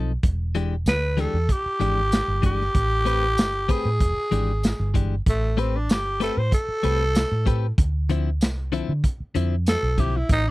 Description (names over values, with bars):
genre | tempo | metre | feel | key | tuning
straight-eighth soul blues | 95 BPM | 4/4 | straight | A minor | A4 = 440 Hz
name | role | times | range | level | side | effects
direct-recorded clean electric guitar | stabs | 0.0-10.2 s | D3 to B4 | -27 LUFS | left 6 dB | none
vintage muted fingered electric bass | bass | 0.0-10.5 s | E1 to D3 | -24 LUFS | equal | none
crunchy breakbeat drum kit | drums | 0.2-10.4 s | hi-hat, kick drum, snare drum, tambourine | -22 LUFS | equal | none
growling tenor saxophone | melody | 0.9-10.5 s | A3 to C5 | -25 LUFS | equal | none
room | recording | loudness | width
little or no reverb | dry, close 1970s-style studio recording | -20 LUFS | side -19 dB against mid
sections
0.0-5.3 A section; 5.3-10.5 B section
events
tenor saxophone solo 5.3-10.5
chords
0.2 E7#9; 2.8 Am9; 4.0 E7#9; 5.3 Am9; 7.8 Dm9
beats
| 0.23 0.86 1.49 2.12 | 2.75 3.38 4.01 4.64 | 5.27 5.89 6.52 7.15 | 7.78 8.41 9.04 9.67 | 10.30